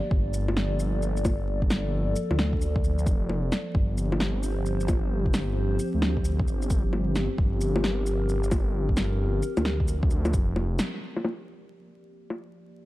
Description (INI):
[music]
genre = future garage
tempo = 132 BPM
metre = 4/4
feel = swing 64% on 16ths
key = G minor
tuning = A4 = 440 Hz
[part]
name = warbly tape-like pad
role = sustained chords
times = 0.0-12.9 s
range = F3 to D5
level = -32 LUFS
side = equal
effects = chorus, built-in reverb, sidechain pumping
[part]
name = swelling detuned saw bass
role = bass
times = 0.1-10.8 s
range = F1 to D2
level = -27 LUFS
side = equal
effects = sidechain pumping
[part]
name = electronic kick drum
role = drums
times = 0.1-10.5 s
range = none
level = -26 LUFS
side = equal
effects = studio reverb
[part]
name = electronic shaker, bongos and snare drum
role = drums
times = 0.3-12.4 s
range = none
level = -30 LUFS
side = equal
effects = low-pass filter on snare, studio reverb, low-pass filter on perc
[sound]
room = digital ambience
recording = dark, warm production, vinyl crackle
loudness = -24 LUFS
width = side -17 dB against mid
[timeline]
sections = 0.0-11.0 A section; 11.0-12.9 B section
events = band accent 10.8; filter sweep on ambient pad 11.0-12.9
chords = 0.0 Gm7; 3.7 Fsus2/G; 11.0 Gm7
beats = | 0.11 0.57 1.02 1.48 | 1.93 2.38 2.84 3.29 | 3.75 4.20 4.66 5.11 | 5.57 6.02 6.47 6.93 | 7.38 7.84 8.29 8.75 | 9.20 9.66 10.11 10.57 | 11.02 11.47 11.93 12.38 | 12.84